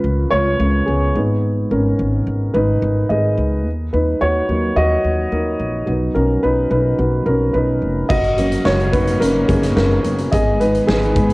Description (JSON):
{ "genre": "piano-driven pop", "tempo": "108 BPM", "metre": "4/4", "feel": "straight", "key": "unclear", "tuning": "A4 = 441 Hz", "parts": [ { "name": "dark upright piano", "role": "accompaniment", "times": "0.0-11.3 s", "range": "Gb3 to Eb5", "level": "-17 LUFS", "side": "equal", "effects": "cassette tape" }, { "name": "upright bass", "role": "bass", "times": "0.0-11.3 s", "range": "F1 to Ab2", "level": "-19 LUFS", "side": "equal", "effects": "none" }, { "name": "warm studio string section", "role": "sustained chords", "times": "8.1-11.3 s", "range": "Db3 to Cb4", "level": "-24 LUFS", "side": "left 2 dB", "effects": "cassette tape" }, { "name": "huge arena drum kit", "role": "drums", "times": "8.1-11.3 s", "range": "crash cymbal, hi-hat, kick drum, snare drum", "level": "-21 LUFS", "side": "equal", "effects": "cassette tape" } ], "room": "moderate spring reverb, RT60 2.2 s", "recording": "home recording on cassette", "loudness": "-15 LUFS", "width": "side -22 dB against mid", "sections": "0.0-8.1 A section; 8.1-11.3 B section", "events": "upright piano solo 0.0-8.1, 8.1-11.3", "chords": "0.0 Db; 1.2 Abm; 3.7 Ebm; 5.9 Cb; 8.1 Gb; 10.3 Db7(no3)/Ab (rootless)", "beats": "0.32 0.87 | 1.43 1.99 2.54 3.10 | 3.65 4.21 4.77 5.32 | 5.88 6.43 6.99 7.55 | 8.10 8.66 9.21 9.77 | 10.33 10.88" }